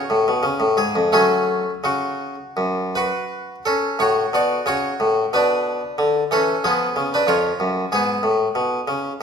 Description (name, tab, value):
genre	classical, baroque-style suite movement for harpsichord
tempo	78-96 BPM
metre	4/4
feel	rubato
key	F# minor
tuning	A4 = 440 Hz
part	harpsichord	solo	0.0-9.1 s	E#2 to D5	-18 LUFS	left 1 dB	none
room	moderate recital hall reverb, RT60 1.3 s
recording	minimal, uncompressed stereo recording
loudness	-18 LUFS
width	side -6 dB against mid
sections	0.0-4.0 A section; 4.0-9.2 B section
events	none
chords	0.4 C#; 1.1 F#m; 4.0 F#m/A; 5.3 Bm11; 6.6 C#7/E#